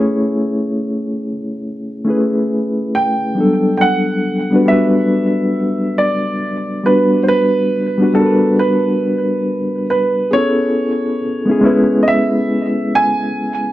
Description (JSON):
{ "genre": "lo-fi hip hop", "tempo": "69 BPM", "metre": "4/4", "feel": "swing 65% on 16ths", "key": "G major", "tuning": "A4 = 440 Hz", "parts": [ { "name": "mellow reed electric piano", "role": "accompaniment", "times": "0.0-13.7 s", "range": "F#3 to C#5", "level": "-15 LUFS", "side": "left 1 dB", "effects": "fast tremolo, cassette tape, low-pass filter, plate reverb" }, { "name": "dark upright piano", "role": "melody", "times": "2.9-13.7 s", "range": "A4 to G#5", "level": "-18 LUFS", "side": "right 2 dB", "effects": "plate reverb, analog delay" } ], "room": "wet studio reverb, RT60 0.7 s", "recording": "none", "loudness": "-13 LUFS", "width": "side -15 dB against mid", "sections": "0.0-3.4 A section; 3.4-13.7 B section", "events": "filter sweep on reed electric piano 0.0-3.4", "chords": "0.0 Amaj9; 3.4 Gmaj9; 10.3 Amaj9" }